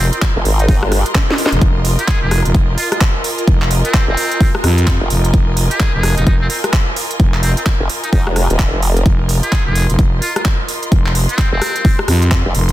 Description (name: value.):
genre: bass house.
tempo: 129 BPM.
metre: 4/4.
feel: swing 61% on 16ths.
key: F minor.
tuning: A4 = 440 Hz.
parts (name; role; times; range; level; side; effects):
trumpet with metal mute; melody; 0.0-12.0 s; C4 to Ab4; -23 LUFS; equal; digital delay.
growling FM bass; bass; 0.0-12.7 s; F1 to F2; -15 LUFS; equal; tube saturation, sidechain pumping.
rich symphonic string section; texture; 0.0-12.7 s; F4 to C6; -24 LUFS; equal; sidechain pumping.
garage drum kit; drums; 0.1-12.7 s; handclaps, hi-hat, rim click, snare drum; -20 LUFS; equal; soft clipping on snare.
electronic kick drum; drums; 0.2-12.4 s; none; -14 LUFS; equal; none.
formant-sweep wobble bass; bass; 0.4-1.0, 4.1-12.5 s; Eb1 to Ab1; -15 LUFS; equal; chorus, overdrive, sidechain pumping.
room: little or no reverb.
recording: dense, heavily limited modern master.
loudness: -12 LUFS.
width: side -14 dB against mid.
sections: 0.0-12.7 A section.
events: drum fill 1.1-1.6.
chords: 0.0 Fm.